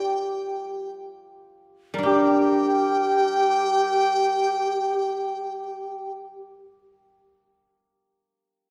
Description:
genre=chinese traditional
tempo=free time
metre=none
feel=none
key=G yu mode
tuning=A4 = 439 Hz
part: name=mellow hollow dizi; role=melody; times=0.0-6.1 s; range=G5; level=-28 LUFS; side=equal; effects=none
part: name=hammered dulcimer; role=second line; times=0.0-6.1 s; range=G4 to Bb4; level=-32 LUFS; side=equal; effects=none
part: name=mellow xiao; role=second line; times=0.0-6.1 s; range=G4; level=-28 LUFS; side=equal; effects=none
part: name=guzheng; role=accompaniment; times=0.0-8.0 s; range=G3 to D5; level=-27 LUFS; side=equal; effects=none
room=wet concert hall reverb, RT60 2.2 s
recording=heard from further back in the room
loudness=-23 LUFS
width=mono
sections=0.0-2.0 A section; 2.0-6.6 B section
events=slowing down 0.0-2.0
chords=none

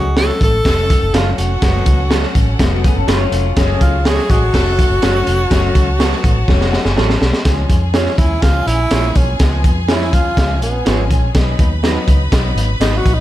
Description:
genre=uptempo 1960s-style soul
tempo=123 BPM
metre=4/4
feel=straight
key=Db mixolydian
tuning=A4 = 441 Hz
part: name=breathy tenor saxophone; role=melody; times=0.0-13.2 s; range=Cb4 to A4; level=-19 LUFS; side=equal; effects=none
part: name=dark horn section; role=second line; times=0.0-5.2 s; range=Gb3 to A4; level=-25 LUFS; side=right 1 dB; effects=none
part: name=clear concert grand piano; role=accompaniment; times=0.0-13.2 s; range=Eb3 to A5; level=-23 LUFS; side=left 4 dB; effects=none
part: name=vintage muted fingered electric bass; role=bass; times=0.0-13.2 s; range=F1 to F2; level=-17 LUFS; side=equal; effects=none
part: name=electric guitar through a small old amp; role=stabs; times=0.2-13.0 s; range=Eb4 to Db5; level=-26 LUFS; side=right 10 dB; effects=tape echo
part: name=crunchy breakbeat drum kit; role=drums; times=0.2-13.2 s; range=hi-hat, kick drum, snare drum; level=-15 LUFS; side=equal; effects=none
part: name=bright studio violin section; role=second line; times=0.7-13.2 s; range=Db4 to Cb6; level=-26 LUFS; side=equal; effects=tape echo
part: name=electric guitar through a small old amp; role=riff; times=2.6-3.6 s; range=A3 to Db5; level=-23 LUFS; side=left 7 dB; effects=lush chorus
room=little or no reverb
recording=none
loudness=-12 LUFS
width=side -14 dB against mid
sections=0.0-7.5 A section; 7.5-13.2 B section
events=drum fill 6.5-7.5; grand piano fill 6.5-7.5; tenor saxophone solo 7.5-13.2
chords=0.0 Gbm; 7.5 Db; 11.3 Cb

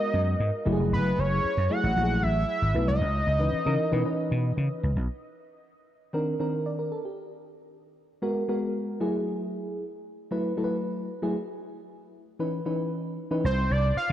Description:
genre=early-eighties boogie funk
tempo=115 BPM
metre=4/4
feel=straight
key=unclear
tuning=A4 = 439 Hz
part: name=fat analog lead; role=melody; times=0.0-4.8, 13.5-14.1 s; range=Cb5 to Gb5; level=-28 LUFS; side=right 1 dB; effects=diffuse ambient delay
part: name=mellow FM electric piano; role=accompaniment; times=0.0-13.4 s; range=Eb3 to D5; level=-29 LUFS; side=equal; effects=chorus
part: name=vintage slap bass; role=bass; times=0.1-5.1, 13.4-14.1 s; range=F1 to Db3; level=-25 LUFS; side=equal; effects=none
room=moderate plate reverb, RT60 2.8 s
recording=dreamy mix soaked in reverb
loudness=-25 LUFS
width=side -12 dB against mid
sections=0.0-5.1 A section; 5.1-13.4 B section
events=none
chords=0.0 Abm9; 0.7 Gbm9; 3.0 Dbm9; 5.1 Cm9; 7.2 Abm9; 9.0 Gbm9; 11.4 Dbm9; 13.4 Csus2

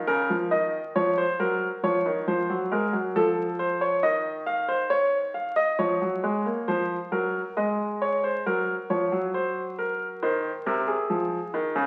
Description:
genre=classical, baroque-style two-part invention for grand piano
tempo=68 BPM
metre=4/4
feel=straight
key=Bb minor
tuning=A4 = 441 Hz
part: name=clear baby grand piano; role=solo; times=0.0-11.9 s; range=C3 to F5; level=-26 LUFS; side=equal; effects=none
room=wet stone room reverb, RT60 1.3 s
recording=very old 78 rpm record, vinyl crackle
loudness=-26 LUFS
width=mono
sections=0.0-6.7 A section; 6.7-11.9 B section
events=none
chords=0.0 Bbm; 1.4 Cm7b5; 3.1 F7; 4.9 Bbm; 6.7 Db/F; 8.5 Gbmaj7; 10.2 Bb9sus4/C

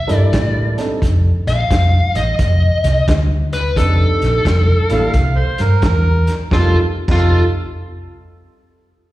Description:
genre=electric blues shuffle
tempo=87 BPM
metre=4/4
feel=swing 64% on 8ths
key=F mixolydian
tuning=A4 = 440 Hz
part: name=smooth overdriven lead guitar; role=melody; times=0.0-7.4 s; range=F4 to F5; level=-19 LUFS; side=left 1 dB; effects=slapback echo
part: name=dark baby grand piano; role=accompaniment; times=0.1-7.4 s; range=G3 to Bb4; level=-23 LUFS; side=right 2 dB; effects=slapback echo
part: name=hollow-body short-scale fingered electric bass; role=bass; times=0.1-7.4 s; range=F1 to A2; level=-14 LUFS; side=equal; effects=none
part: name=vintage drum kit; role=drums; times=0.1-7.2 s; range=crash cymbal, hi-hat, kick drum, snare drum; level=-20 LUFS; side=equal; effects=none
part: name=overdriven harmonica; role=second line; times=4.9-7.4 s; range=F4 to F5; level=-23 LUFS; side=right 4 dB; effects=slapback echo
room=little or no reverb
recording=live gig heard through the venue's PA, recital hall reverb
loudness=-12 LUFS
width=side -16 dB against mid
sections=0.0-6.5 A section; 6.5-9.1 B section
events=none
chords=0.0 C13; 1.0 F13; 5.1 C; 6.5 F9

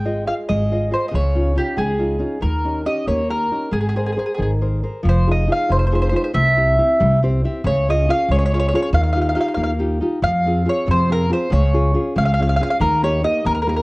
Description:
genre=italian folk, Italian serenade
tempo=93 BPM (dotted quarters)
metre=6/8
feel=straight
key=unclear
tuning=A4 = 440 Hz
part: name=mandolin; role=melody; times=0.0-13.8 s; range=G4 to G5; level=-20 LUFS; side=equal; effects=plate reverb
part: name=nylon-string guitar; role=accompaniment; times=0.0-13.8 s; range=C3 to E5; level=-22 LUFS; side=left 1 dB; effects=plate reverb
part: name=upright bass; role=bass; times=0.0-13.8 s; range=F1 to F2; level=-19 LUFS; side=equal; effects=none
room=moderate studio reverb, RT60 0.6 s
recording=worn, warbling old tape, cassette tape, warbly pitch drift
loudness=-16 LUFS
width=side -23 dB against mid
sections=0.0-5.0 A section; 5.0-13.8 B section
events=nylon-string guitar fill 7.0-7.7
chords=0.0 Fm7/Ab; 1.1 Dbadd9; 2.4 Eb7; 3.7 Abadd9; 5.0 Fm7; 6.4 C; 7.7 Db; 8.9 Ebadd9; 10.2 Fm; 11.5 Db; 12.8 Eb

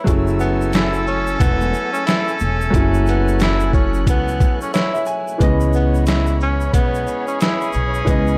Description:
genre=hip hop, boom-bap hip-hop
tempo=90 BPM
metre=4/4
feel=swing 62% on 16ths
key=unclear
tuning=A4 = 439 Hz
part: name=warm grand piano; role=accompaniment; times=0.0-8.4 s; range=E3 to G#5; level=-24 LUFS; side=equal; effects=high-pass filter, low-pass filter
part: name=warm studio string section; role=sustained chords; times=0.0-8.4 s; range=A3 to F#6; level=-34 LUFS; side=equal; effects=high-pass filter, low-pass filter
part: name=bright trumpet section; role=stabs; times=0.1-8.4 s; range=C#4 to A4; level=-28 LUFS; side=equal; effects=high-pass filter, low-pass filter, digital delay
part: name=upright bass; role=bass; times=0.1-8.4 s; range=E1 to C#2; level=-22 LUFS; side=equal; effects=none
part: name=boom bap sampler-style drum kit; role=drums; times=0.1-8.3 s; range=hi-hat, kick drum, shaker, snare drum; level=-20 LUFS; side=equal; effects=vintage 12-bit sampler grit
part: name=egg shaker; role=percussion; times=0.1-8.4 s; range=none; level=-44 LUFS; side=equal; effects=none
part: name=breathy tenor saxophone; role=melody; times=0.4-7.7 s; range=B3 to E4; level=-26 LUFS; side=equal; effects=high-pass filter, low-pass filter, digital delay
room=small room ambience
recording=none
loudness=-18 LUFS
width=mono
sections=0.0-8.4 A section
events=none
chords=0.1 F#m9; 5.4 C#m7

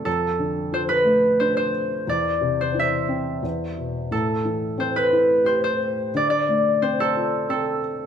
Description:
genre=children's music, lullaby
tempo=89 BPM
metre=3/4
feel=straight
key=unclear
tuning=A4 = 440 Hz
part: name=concert harp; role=melody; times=0.0-8.1 s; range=A4 to E5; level=-21 LUFS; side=equal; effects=none
part: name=felt-muted upright piano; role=accompaniment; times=0.0-8.1 s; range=E2 to G4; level=-26 LUFS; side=left 1 dB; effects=none
room=light reverb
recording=band playing live in one room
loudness=-19 LUFS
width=side -8 dB against mid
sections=0.0-8.1 A section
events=none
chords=0.1 Dm/F; 2.1 Cadd9/E; 3.4 E5; 4.1 Am7; 6.2 Dm7

